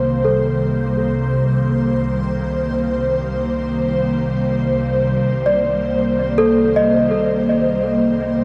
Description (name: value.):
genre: ambient.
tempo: free time.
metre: none.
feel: none.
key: C dorian.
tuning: A4 = 439 Hz.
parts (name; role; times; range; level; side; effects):
ethereal airy pad; sustained chords; 0.0-8.4 s; C3 to C5; -19 LUFS; equal; ensemble chorus, built-in reverb, phaser.
rich studio double bass section; bass; 0.0-8.4 s; C2; -32 LUFS; equal; none.
small celesta; arpeggios; 0.2-8.4 s; A4 to Eb5; -22 LUFS; equal; tape echo.
room: wet huge ambient reverb, RT60 7.3 s.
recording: faint mains hum.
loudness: -18 LUFS.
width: mono.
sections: 0.0-8.4 A section.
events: fade-out on double bass section 0.0-8.4.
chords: 0.0 Cm7.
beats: free time.